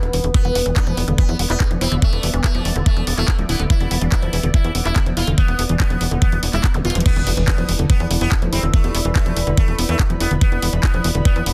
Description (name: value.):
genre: psychedelic trance.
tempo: 143 BPM.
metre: 4/4.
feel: straight.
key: E phrygian.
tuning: A4 = 440 Hz.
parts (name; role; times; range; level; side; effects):
overtone-sweeping drone; sustained chords; 0.0-11.5 s; B3 to G5; -32 LUFS; equal; chorus, built-in reverb, phaser, sidechain pumping.
woody wave-folded pluck; riff; 0.0-11.5 s; D3 to F4; -29 LUFS; equal; chorus, sidechain pumping, delay.
tight sequencer bass; bass; 0.0-11.5 s; D1 to E2; -23 LUFS; equal; tube saturation.
drum and bass drum kit; drums; 0.0-11.5 s; crash cymbal, handclaps, hi-hat; -28 LUFS; equal; none.
sitar; melody; 0.3-11.4 s; A3 to F4; -30 LUFS; equal; phaser, sidechain pumping, delay.
electronic kick drum; drums; 0.3-11.3 s; none; -18 LUFS; equal; none.
zap and impact; sound effects; 6.7-8.7 s; none; -31 LUFS; equal; none.
airy breathy pad; texture; 7.5-11.5 s; E4 to B5; -32 LUFS; equal; chorus, sidechain pumping.
formant-sweep wobble bass; second line; 7.5-9.3 s; E3 to B3; -40 LUFS; equal; none.
room: digital ambience.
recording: dense, heavily limited modern master.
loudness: -18 LUFS.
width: mono.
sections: 0.0-7.1 A section; 7.1-11.5 B section.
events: filter sweep on synth arpeggio sound 0.0-7.1; drum fill 6.8; drop 7.1-11.5; impact 7.1-8.7.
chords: 0.0 E5.